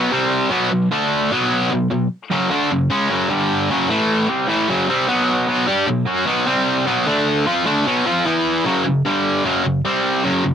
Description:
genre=metal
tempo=151 BPM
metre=4/4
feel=straight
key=unclear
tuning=A4 = 438 Hz
part: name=distorted electric guitar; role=solo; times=0.0-10.5 s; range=F#2 to G4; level=-16 LUFS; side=equal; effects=overdrive
room=moderate booth ambience, RT60 0.2 s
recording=home recording on cassette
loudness=-16 LUFS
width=side -8 dB against mid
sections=0.0-8.7 A section; 8.7-10.5 B section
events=none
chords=0.1 C5; 0.5 B5; 0.9 D5; 1.3 B5; 2.3 F#m; 3.3 G5; 3.7 F#5; 3.9 A5; 4.3 F#m; 5.1 B5; 6.5 C5; 6.9 B5; 7.1 D5; 7.5 B5; 8.3 E5; 8.7 F#5; 9.1 G5; 9.5 F#5; 9.9 C5

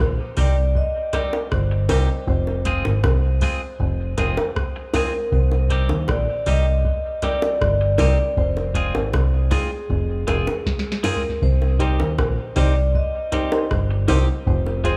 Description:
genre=roots reggae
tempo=79 BPM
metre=4/4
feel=straight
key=C minor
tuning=A4 = 440 Hz
part: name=vibraphone with medium mallets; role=melody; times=0.0-15.0 s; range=Ab4 to Eb5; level=-29 LUFS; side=equal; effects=dub echo
part: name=deep dub fingered electric bass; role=bass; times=0.0-15.0 s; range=F1 to Eb2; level=-22 LUFS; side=equal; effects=none
part: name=clean electric guitar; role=accompaniment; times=0.4-15.0 s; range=G3 to Ab4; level=-32 LUFS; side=equal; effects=dub echo
part: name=soft vintage rhythm box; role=drums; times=0.4-15.0 s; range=hi-hat, kick drum, rim click, snare drum, toms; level=-27 LUFS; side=equal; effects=none
part: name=bongos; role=percussion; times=1.1-14.8 s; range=none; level=-29 LUFS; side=equal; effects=none
part: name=reed electric piano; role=stabs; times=11.8-15.0 s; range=Eb4 to C5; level=-30 LUFS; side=equal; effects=fast tremolo
room=little or no reverb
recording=rough home demo mix, small room reverb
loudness=-21 LUFS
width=mono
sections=0.0-15.0 A section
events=drum fill 10.7-11.4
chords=0.0 Cm; 2.3 Fm; 5.3 Cm; 8.4 Fm; 11.4 Cm; 14.5 Fm

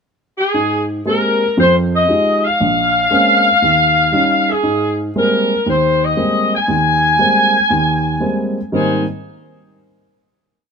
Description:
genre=jazz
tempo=118 BPM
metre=4/4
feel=swing 68% on 8ths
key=Ab major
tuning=A4 = 442 Hz
part: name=bright saxophone section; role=melody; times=0.4-9.0 s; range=Eb4 to Ab5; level=-13 LUFS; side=left 1 dB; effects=none
part: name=dark upright piano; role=accompaniment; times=0.5-9.0 s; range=Bb1 to G4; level=-17 LUFS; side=right 2 dB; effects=none
room=light reverb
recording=close, detailed microphones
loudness=-12 LUFS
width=side -5 dB against mid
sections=0.0-0.5 pickup bar; 0.5-8.7 A section; 8.7-10.7 final chord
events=none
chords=0.0 N.C.; 0.5 Abmaj9; 1.6 Fm9; 2.6 Bbm9; 3.6 Eb7; 4.6 Abmaj9

